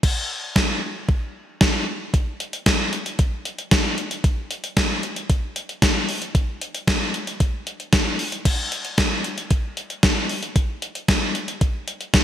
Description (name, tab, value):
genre	pop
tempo	114 BPM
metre	4/4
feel	straight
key	none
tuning	none
part	gated 80s digital drum machine	drums	0.0-12.2 s	crash cymbal, hi-hat, kick drum, snare drum	-19 LUFS	equal	gated reverb, gated reverb snare, overdrive
room	light reverb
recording	bright 1980s-style digital production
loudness	-20 LUFS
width	side -11 dB against mid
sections	0.0-8.5 A section; 8.5-12.2 B section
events	none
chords	none